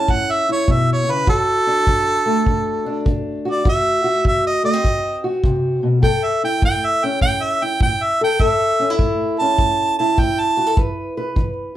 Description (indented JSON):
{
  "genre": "acoustic country blues, solo or duo",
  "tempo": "101 BPM",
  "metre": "4/4",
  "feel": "swing 66% on 8ths",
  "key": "A major",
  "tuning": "A4 = 442 Hz",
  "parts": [
    { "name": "warm harmonica", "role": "melody", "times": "0.0-10.8 s", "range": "A4 to A5", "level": "-18 LUFS", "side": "right 2 dB", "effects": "none" },
    { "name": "fingerpicked old ladder-braced acoustic guitar", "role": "accompaniment", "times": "0.0-11.8 s", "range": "A2 to B4", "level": "-20 LUFS", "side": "left 1 dB", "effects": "none" },
    { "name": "kick drum", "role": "drums", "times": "0.1-11.6 s", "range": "none", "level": "-20 LUFS", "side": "equal", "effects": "none" }
  ],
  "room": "wet small room reverb, RT60 0.5 s",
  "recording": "heard from further back in the room",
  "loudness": "-15 LUFS",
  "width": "side -12 dB against mid",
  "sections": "0.0-11.8 A section",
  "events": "harmonica solo 0.0-11.8",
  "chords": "0.0 A; 1.3 D; 3.7 D#dim7; 6.0 A; 10.8 E5"
}